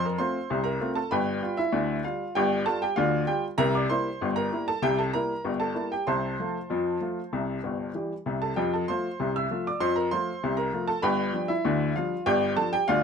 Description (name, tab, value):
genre	ragtime piano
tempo	97 BPM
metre	2/4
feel	straight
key	F major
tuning	A4 = 445 Hz
part	clear upright piano	solo	0.0-13.0 s	G1 to E6	-25 LUFS	equal	none
room	light reverb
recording	close, detailed microphones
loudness	-25 LUFS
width	side -6 dB against mid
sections	0.0-13.0 A section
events	none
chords	0.0 F; 1.1 G7; 3.6 C7; 6.1 F/C; 7.3 C; 8.6 F; 11.0 G7